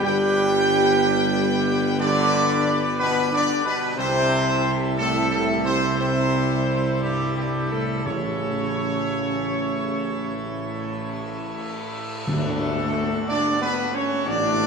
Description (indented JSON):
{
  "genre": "classical, ceremonial fanfare",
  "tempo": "56-61 BPM",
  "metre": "4/4",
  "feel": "straight",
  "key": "D major",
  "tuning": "A4 = 443 Hz",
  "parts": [
    { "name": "warm trumpet section", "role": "melody", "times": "0.0-14.7 s", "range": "G4 to G5", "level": "-25 LUFS", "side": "equal", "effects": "none" },
    { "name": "mellow French horn section", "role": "sustained chords", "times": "0.0-14.7 s", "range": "G3 to G4", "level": "-28 LUFS", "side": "left 3 dB", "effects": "none" },
    { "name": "pipe organ, full organ", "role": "sustained chords", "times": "0.0-14.7 s", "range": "A2 to B4", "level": "-29 LUFS", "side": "equal", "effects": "none" },
    { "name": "warm trombone section", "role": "sustained chords", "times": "0.0-14.7 s", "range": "G2 to D4", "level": "-28 LUFS", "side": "right 2 dB", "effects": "none" },
    { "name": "mellow tuba", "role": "bass", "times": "0.0-14.7 s", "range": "G1 to D2", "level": "-26 LUFS", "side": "right 3 dB", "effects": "none" },
    { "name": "cymbal swell and tam-tam", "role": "percussion", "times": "8.1-14.7 s", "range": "none", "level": "-34 LUFS", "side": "left 3 dB", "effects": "none" },
    { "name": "timpani", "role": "percussion", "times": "8.1-13.7 s", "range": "A2 to D3", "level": "-32 LUFS", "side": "right 1 dB", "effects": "none" }
  ],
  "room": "wet scoring stage reverb, RT60 1.6 s",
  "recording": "minimal, uncompressed stereo recording",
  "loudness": "-20 LUFS",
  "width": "side -5 dB against mid",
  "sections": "0.0-12.3 A section; 12.3-14.7 B section",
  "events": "band accent 12.3-13.3",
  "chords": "0.0 G; 4.0 C6; 8.1 A; 12.3 D"
}